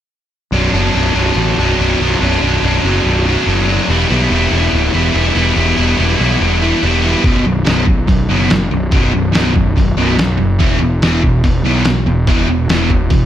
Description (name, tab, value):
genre	classic rock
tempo	143 BPM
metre	4/4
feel	straight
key	B minor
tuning	A4 = 440 Hz
part	overdriven electric guitar	riff	0.5-13.3 s	B1 to E4	-14 LUFS	equal	none
part	fuzz picked electric bass	bass	0.5-13.3 s	B0 to B1	-16 LUFS	equal	overdrive
part	lo-fi sampler-style drum kit	drums	7.2-13.2 s	hi-hat, kick drum, snare drum	-15 LUFS	equal	none
room	light reverb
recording	none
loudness	-11 LUFS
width	side -11 dB against mid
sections	0.5-7.2 A section; 7.2-13.3 B section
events	none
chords	0.5 Bm; 3.9 Em; 7.2 B5; 10.6 E5